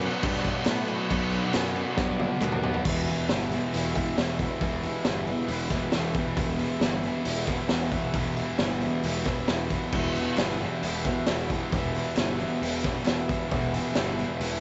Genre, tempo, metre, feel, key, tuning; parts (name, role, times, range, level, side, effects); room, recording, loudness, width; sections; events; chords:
garage rock duo or trio; 135 BPM; 4/4; straight; E minor; A4 = 439 Hz
overdriven combo organ; sustained chords; 0.0-14.6 s; F#4 to B5; -39 LUFS; equal
fuzz guitar; riff; 0.0-14.6 s; E2 to B3; -32 LUFS; equal; distortion
fuzz fingered electric bass; bass; 0.0-14.6 s; E1 to A2; -36 LUFS; equal; overdrive
raw garage drum kit; drums; 0.0-14.5 s; crash cymbal, hi-hat, kick drum, snare drum, toms; -32 LUFS; equal
group handclap; percussion; 0.7-2.5, 10.4-14.1 s; -45 LUFS; equal
light reverb, studio reverb; nothing above 7.9 kHz; -28 LUFS; mono
0.0-2.9 A section; 2.9-14.6 B section
drum fill 2.0-2.9; transistor combo organ fill 2.2-2.9
0.0 Bm; 2.9 Em